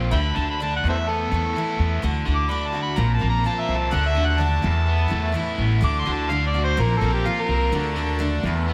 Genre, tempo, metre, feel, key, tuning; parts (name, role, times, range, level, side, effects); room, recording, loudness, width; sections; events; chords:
folk rock and heartland rock; 126 BPM; 4/4; straight; D major; A4 = 440 Hz
picked steel-string acoustic guitar; accompaniment; 0.0-8.7 s; Bb2 to F#4; -32 LUFS; equal; analog chorus
overdriven electric guitar; riff; 0.0-8.7 s; E2 to F#4; -31 LUFS; equal
upright bass; bass; 0.0-8.7 s; A1 to E2; -25 LUFS; equal
overdriven harmonica; melody; 0.1-7.7 s; F4 to D6; -28 LUFS; equal
accordion; sustained chords; 3.9-8.7 s; E4 to Bb5; -37 LUFS; equal
moderate plate reverb, RT60 3.1 s; dreamy mix soaked in reverb; -22 LUFS; mono
0.0-8.7 A section
harmonica solo 0.0-8.7
0.1 D; 0.8 Asus2/E; 2.0 D; 3.0 Bbsus2; 3.9 D; 4.6 Asus2/E; 5.8 D; 6.8 Bbsus2; 7.7 D